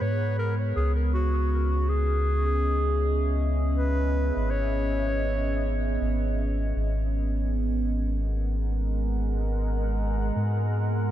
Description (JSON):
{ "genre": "ambient dub", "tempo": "free time", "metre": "none", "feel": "none", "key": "G# minor", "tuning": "A4 = 440 Hz", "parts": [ { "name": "mellow clarinet", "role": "melody", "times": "0.0-6.0 s", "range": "F#4 to C#5", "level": "-31 LUFS", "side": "left 1 dB", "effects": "dub echo" }, { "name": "deep dark ambient pad", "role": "sustained chords", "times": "0.0-11.1 s", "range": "G#3 to A#5", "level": "-31 LUFS", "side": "right 2 dB", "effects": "chorus, built-in reverb" }, { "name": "soft dub sub bass", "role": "bass", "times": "0.0-11.1 s", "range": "G#1 to G#2", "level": "-25 LUFS", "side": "equal", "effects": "tube saturation" } ], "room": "light reverb, studio reverb", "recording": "none", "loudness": "-24 LUFS", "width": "side -12 dB against mid", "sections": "0.0-11.1 A section", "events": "none", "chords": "0.0 G#m7; 0.8 C#m7; 6.8 G#m7", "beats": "free time" }